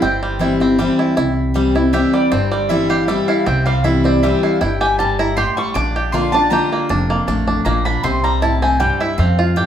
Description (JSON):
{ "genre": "bluegrass", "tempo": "157 BPM", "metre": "3/4", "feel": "straight", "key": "C mixolydian", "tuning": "A4 = 440 Hz", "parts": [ { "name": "picked steel-string acoustic guitar", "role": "accompaniment", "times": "0.0-9.7 s", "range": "F2 to F4", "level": "-18 LUFS", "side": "left 2 dB", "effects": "none" }, { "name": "bluegrass banjo", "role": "arpeggios", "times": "0.0-9.7 s", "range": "G3 to G4", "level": "-20 LUFS", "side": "right 2 dB", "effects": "none" }, { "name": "mandolin", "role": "stabs", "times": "0.0-9.7 s", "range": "C5 to D6", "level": "-20 LUFS", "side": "right 1 dB", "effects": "none" }, { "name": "upright bass", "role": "bass", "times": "0.0-9.7 s", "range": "F1 to F2", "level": "-21 LUFS", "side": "equal", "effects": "none" } ], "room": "wet studio reverb, RT60 0.9 s", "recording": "heard from further back in the room", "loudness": "-14 LUFS", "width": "side -9 dB against mid", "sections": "0.0-9.7 A section", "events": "mandolin solo 0.0-9.7", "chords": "0.0 C; 5.8 Bb; 8.0 C" }